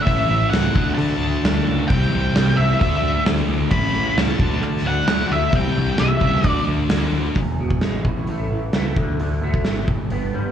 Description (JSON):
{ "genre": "quiet-loud alternative rock", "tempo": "132 BPM", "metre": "4/4", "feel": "straight", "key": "unclear", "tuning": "A4 = 440 Hz", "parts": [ { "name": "octave-fuzz lead guitar", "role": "melody", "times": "0.0-6.6 s", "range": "E5 to B5", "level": "-23 LUFS", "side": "equal", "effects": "distortion, tape echo, slapback echo" }, { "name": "thick fuzz guitar", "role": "riff", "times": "0.0-7.4 s", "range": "A2 to G4", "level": "-23 LUFS", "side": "left 7 dB", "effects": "distortion" }, { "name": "thick fuzz guitar", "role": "riff", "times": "0.0-7.4 s", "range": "A2 to D4", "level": "-26 LUFS", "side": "right 11 dB", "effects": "distortion" }, { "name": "growling picked electric bass", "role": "bass", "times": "0.1-10.5 s", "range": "E1 to D3", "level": "-24 LUFS", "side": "equal", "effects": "overdrive" }, { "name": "huge arena drum kit", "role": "drums", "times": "0.1-10.2 s", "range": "hi-hat, kick drum, snare drum", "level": "-22 LUFS", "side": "right 1 dB", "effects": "none" }, { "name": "electric guitar through a small old amp", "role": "arpeggios", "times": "7.4-10.5 s", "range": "E2 to B3", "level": "-27 LUFS", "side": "right 2 dB", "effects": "ensemble chorus, slapback echo" } ], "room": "light reverb", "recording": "live gig heard through the venue's PA, cassette tape, club ambience", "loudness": "-17 LUFS", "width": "side -9 dB against mid", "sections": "0.0-7.4 A section; 7.4-10.5 B section", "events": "none", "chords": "0.1 A; 0.8 D; 1.9 C; 2.8 Dadd9; 3.7 A; 4.4 D; 5.5 C; 6.5 D; 7.4 E; 8.0 A; 9.0 D5; 9.9 G" }